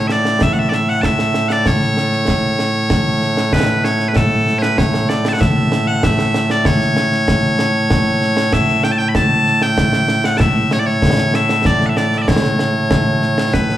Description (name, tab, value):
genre	scottish traditional, Scottish pipe music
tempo	96 BPM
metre	4/4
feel	straight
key	A mixolydian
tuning	A4 = 441 Hz
part	loud bright bagpipes	melody	0.0-13.8 s	A2 to B5	-15 LUFS	equal	slapback echo
part	concert snare drum and concert bass drum	drums	0.1-13.8 s	none	-17 LUFS	equal	none
room	light reverb, small room ambience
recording	live gig heard through the venue's PA, club reverb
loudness	-13 LUFS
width	side -13 dB against mid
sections	0.0-13.8 A section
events	none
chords	none